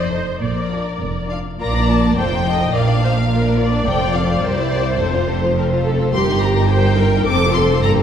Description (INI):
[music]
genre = quick classical-period movement for string orchestra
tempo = 106 BPM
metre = 2/4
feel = straight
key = Bb major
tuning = A4 = 440 Hz
[part]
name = warm symphonic violin section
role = melody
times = 0.0-7.9 s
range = Bb4 to D6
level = -24 LUFS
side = left 3 dB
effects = none
[part]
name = rich symphonic viola section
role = accompaniment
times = 0.0-8.0 s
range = G4 to Eb5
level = -22 LUFS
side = equal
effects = none
[part]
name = rich symphonic cello section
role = bass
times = 0.0-8.0 s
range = C2 to Bb2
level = -20 LUFS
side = right 2 dB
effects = none
[part]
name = rich symphonic double bass section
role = bass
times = 0.0-8.0 s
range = F1 to C2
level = -20 LUFS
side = right 1 dB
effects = none
[part]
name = warm symphonic violin section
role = second line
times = 0.1-8.0 s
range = Bb3 to D5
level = -23 LUFS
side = left 3 dB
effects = none
[sound]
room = wet concert hall reverb, RT60 2.1 s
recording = heard from further back in the room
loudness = -15 LUFS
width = side -8 dB against mid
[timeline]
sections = 0.0-1.6 A section; 1.6-8.0 B section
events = none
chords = 0.4 Bb; 2.2 F7; 2.7 Bb; 3.9 F; 4.4 C7; 5.0 F; 6.1 Eb/G; 7.3 F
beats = | 0.41 1.01 | 1.60 2.18 | 2.75 3.31 | 3.88 4.44 | 5.00 5.57 | 6.13 6.69 | 7.25 7.82